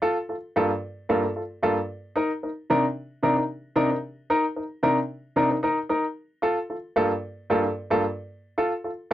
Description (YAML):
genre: disco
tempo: 112 BPM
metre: 4/4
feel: straight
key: G minor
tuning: A4 = 440 Hz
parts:
  - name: clear baby grand piano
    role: solo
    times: 0.0-9.1 s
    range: G2 to Bb4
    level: -22 LUFS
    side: equal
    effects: none
room: light reverb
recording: dry, close 1970s-style studio recording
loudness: -23 LUFS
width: side -12 dB against mid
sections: 0.0-9.1 A section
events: none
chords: 0.0 Gm7; 1.9 Cm7; 6.2 Gm7